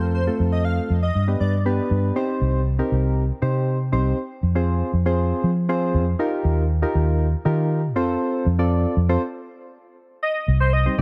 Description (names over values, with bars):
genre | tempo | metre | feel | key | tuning
dance-pop | 119 BPM | 4/4 | straight | C minor | A4 = 440 Hz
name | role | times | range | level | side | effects
soft electric-piano-like synth keys | accompaniment | 0.0-11.0 s | G3 to D5 | -26 LUFS | equal | chorus
vintage muted fingered electric bass | bass | 0.0-11.0 s | C2 to F3 | -22 LUFS | equal | none
airy dreamy lead | melody | 0.1-1.5, 10.2-10.8 s | C5 to F5 | -28 LUFS | equal | chorus, digital delay
room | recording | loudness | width
digital ambience | none | -21 LUFS | mono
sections
0.0-2.2 A section; 2.2-10.2 B section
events
build-up 2.2-10.2; stop 9.2-10.2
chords
0.0 F; 1.2 G; 2.2 Cm; 4.2 Fm; 6.2 Ebadd9; 8.0 F; 10.2 Cm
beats
| 0.14 0.65 1.15 1.66 | 2.16 2.66 3.17 3.67 | 4.18 4.68 5.18 5.69 | 6.19 6.70 7.20 7.71 | 8.21 8.71 9.22 9.72 | 10.23 10.73